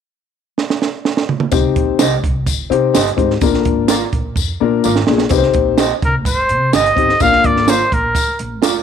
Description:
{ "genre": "uptempo 1960s-style soul", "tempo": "127 BPM", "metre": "4/4", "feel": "straight", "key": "C minor", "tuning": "A4 = 440 Hz", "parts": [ { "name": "compact cocktail drum kit", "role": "drums", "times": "0.6-8.7 s", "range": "hi-hat, kick drum, snare drum, toms", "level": "-17 LUFS", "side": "right 4 dB", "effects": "none" }, { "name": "dark upright piano", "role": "accompaniment", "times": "1.5-7.7 s", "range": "Bb3 to C5", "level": "-16 LUFS", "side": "left 10 dB", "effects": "none" }, { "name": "upright bass", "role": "bass", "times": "1.5-8.8 s", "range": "F1 to C3", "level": "-22 LUFS", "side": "equal", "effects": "none" }, { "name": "tambourine", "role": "percussion", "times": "1.5-8.7 s", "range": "none", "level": "-25 LUFS", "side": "left 14 dB", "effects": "none" }, { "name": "electric guitar through a small old amp", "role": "stabs", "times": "2.0-8.8 s", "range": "F4 to Eb5", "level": "-20 LUFS", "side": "right 13 dB", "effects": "none" }, { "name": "mellow trumpet", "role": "melody", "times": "6.0-8.4 s", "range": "Bb4 to F5", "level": "-14 LUFS", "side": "equal", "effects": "none" } ], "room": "light reverb", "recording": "1960s-style stereo with parts hard left and right", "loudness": "-13 LUFS", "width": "side -8 dB against mid", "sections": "0.0-1.5 A section; 1.5-5.3 B section; 5.3-8.8 C section", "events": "drum fill 0.6-1.5, 4.4-5.3", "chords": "0.0 N.C.; 1.5 Cm; 3.4 Bb; 5.3 Cm; 7.2 Bb" }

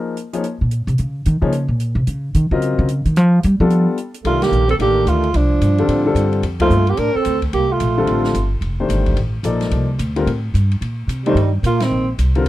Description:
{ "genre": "modal jazz", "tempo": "220 BPM", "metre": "4/4", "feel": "swing 61% on 8ths", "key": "C dorian from 4.2 s", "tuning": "A4 = 440 Hz", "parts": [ { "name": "warm concert grand piano", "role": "accompaniment", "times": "0.0-12.5 s", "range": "D3 to Eb5", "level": "-20 LUFS", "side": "left 4 dB", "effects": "none" }, { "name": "open jazz drum kit", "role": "drums", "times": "0.2-12.5 s", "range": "hi-hat, kick drum, ride cymbal, snare drum", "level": "-30 LUFS", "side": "equal", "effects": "none" }, { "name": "upright bass", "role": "bass", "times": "0.6-12.5 s", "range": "F1 to G3", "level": "-17 LUFS", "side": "equal", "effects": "none" }, { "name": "trombone with plunger mute", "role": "second line", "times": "4.2-8.5, 11.3-12.1 s", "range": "Eb3 to D4", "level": "-24 LUFS", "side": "right 10 dB", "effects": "none" }, { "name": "mellow alto saxophone", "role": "melody", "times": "4.3-8.5, 11.3-12.1 s", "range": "C4 to Bb4", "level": "-19 LUFS", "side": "right 1 dB", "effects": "none" } ], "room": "studio ambience", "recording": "dry, close 1970s-style studio recording", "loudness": "-15 LUFS", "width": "side -15 dB against mid", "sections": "0.0-4.2 A section; 4.2-12.5 B section", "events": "upright bass solo 0.0-4.2; band accent 4.4, 6.6, 11.8", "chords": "0.0 Eb7sus2; 3.2 G9; 4.2 C13sus4; 8.6 F13sus4" }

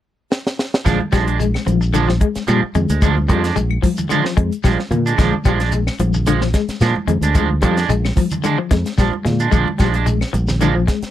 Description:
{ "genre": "afrobeat", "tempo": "111 BPM", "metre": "4/4", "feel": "swing 54% on 16ths", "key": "Bb mixolydian", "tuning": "A4 = 440 Hz", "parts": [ { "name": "tight funk drum kit", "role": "drums", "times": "0.3-11.1 s", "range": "hi-hat, kick drum, snare drum", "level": "-19 LUFS", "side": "equal", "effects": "none" }, { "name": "electric guitar at the edge of break-up", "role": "stabs", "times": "0.8-10.9 s", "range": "F3 to D4", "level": "-21 LUFS", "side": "right 9 dB", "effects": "lush chorus" }, { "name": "electric guitar at the edge of break-up", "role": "arpeggios", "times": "0.9-11.1 s", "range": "D3 to Bb3", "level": "-21 LUFS", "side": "left 8 dB", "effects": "tremolo" }, { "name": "fingered electric bass", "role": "bass", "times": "0.9-11.1 s", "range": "Bb1 to Bb2", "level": "-18 LUFS", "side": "equal", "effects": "none" }, { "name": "claves", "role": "percussion", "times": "0.9-10.8 s", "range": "none", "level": "-33 LUFS", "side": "left 16 dB", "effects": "none" }, { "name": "congas", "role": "percussion", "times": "0.9-10.8 s", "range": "none", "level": "-24 LUFS", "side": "right 3 dB", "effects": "none" }, { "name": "shekere", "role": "percussion", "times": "0.9-11.1 s", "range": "none", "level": "-25 LUFS", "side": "left 2 dB", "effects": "none" } ], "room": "little or no reverb", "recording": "dry, close 1970s-style studio recording, lossy compression artefacts", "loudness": "-15 LUFS", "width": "side -12 dB against mid", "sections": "0.9-11.1 A section", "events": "drum fill 0.3-0.9", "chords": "0.0 N.C.; 0.9 Bb7" }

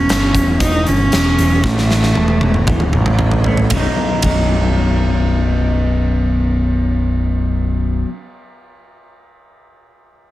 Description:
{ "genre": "quiet-loud alternative rock", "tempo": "116 BPM", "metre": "4/4", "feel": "straight", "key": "B mixolydian", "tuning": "A4 = 441 Hz", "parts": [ { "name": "dark cello", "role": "melody", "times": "0.0-3.2 s", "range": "A3 to D#4", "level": "-17 LUFS", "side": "right 2 dB", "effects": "none" }, { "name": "electric guitar through a small old amp", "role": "arpeggios", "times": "0.0-8.1 s", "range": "B1 to D#4", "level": "-20 LUFS", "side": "left 2 dB", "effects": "wide subtle chorus" }, { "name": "growling picked electric bass", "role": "bass", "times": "0.0-8.0 s", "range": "B0 to A1", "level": "-16 LUFS", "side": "equal", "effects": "overdrive" }, { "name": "huge arena drum kit", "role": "drums", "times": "0.1-4.4 s", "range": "hi-hat, kick drum, ride cymbal, snare drum, toms", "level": "-19 LUFS", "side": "equal", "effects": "none" } ], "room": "light reverb", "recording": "heavily compressed radio sound", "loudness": "-13 LUFS", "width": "side -15 dB against mid", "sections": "0.0-3.7 A section; 3.7-7.9 B section", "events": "cello solo 0.0-3.7; drum fill 1.7-3.7", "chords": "0.0 E5; 1.7 A5; 2.2 E5; 3.0 N.C.; 3.7 B" }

